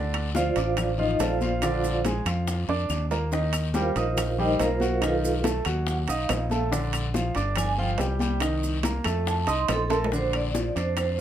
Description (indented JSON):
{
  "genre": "Afro-Cuban jazz",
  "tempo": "141 BPM",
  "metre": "4/4",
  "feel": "straight",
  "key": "Bb major",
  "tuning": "A4 = 440 Hz",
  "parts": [
    { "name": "warm concert grand piano", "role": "accompaniment", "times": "0.0-11.2 s", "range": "D3 to Eb6", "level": "-29 LUFS", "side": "right 2 dB", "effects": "none" },
    { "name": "modern bright fingered electric bass", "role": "bass", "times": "0.0-11.2 s", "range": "G1 to F2", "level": "-28 LUFS", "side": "equal", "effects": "none" },
    { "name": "bongos", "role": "percussion", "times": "0.1-11.2 s", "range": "none", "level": "-36 LUFS", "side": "left 6 dB", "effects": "none" },
    { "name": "claves", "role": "percussion", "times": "0.1-11.2 s", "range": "none", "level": "-35 LUFS", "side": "left 7 dB", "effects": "none" },
    { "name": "congas", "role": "percussion", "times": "0.1-11.2 s", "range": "none", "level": "-34 LUFS", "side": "left 3 dB", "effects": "none" },
    { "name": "timbales", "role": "percussion", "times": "0.1-11.2 s", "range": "none", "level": "-32 LUFS", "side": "right 7 dB", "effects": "none" },
    { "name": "vibraphone with medium mallets", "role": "melody", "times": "0.4-11.2 s", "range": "Eb4 to C6", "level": "-28 LUFS", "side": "right 2 dB", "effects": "plate reverb" },
    { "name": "guiro", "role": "percussion", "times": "0.4-11.2 s", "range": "none", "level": "-40 LUFS", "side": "left 8 dB", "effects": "none" },
    { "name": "maracas", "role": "percussion", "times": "0.4-11.2 s", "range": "none", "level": "-40 LUFS", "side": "right 4 dB", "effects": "none" }
  ],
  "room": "light reverb",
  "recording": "close, detailed microphones",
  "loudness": "-23 LUFS",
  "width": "side -10 dB against mid",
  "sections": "0.0-10.1 A section; 10.1-11.2 B section",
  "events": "vibraphone solo 0.0-10.1; drum fill 2.7-3.3, 9.9",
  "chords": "0.0 Dm7; 1.6 Bb9; 3.3 Eb69; 5.0 B7#11; 6.7 Bb; 7.6 G5; 8.4 Cm7; 9.3 F7; 10.1 Bb"
}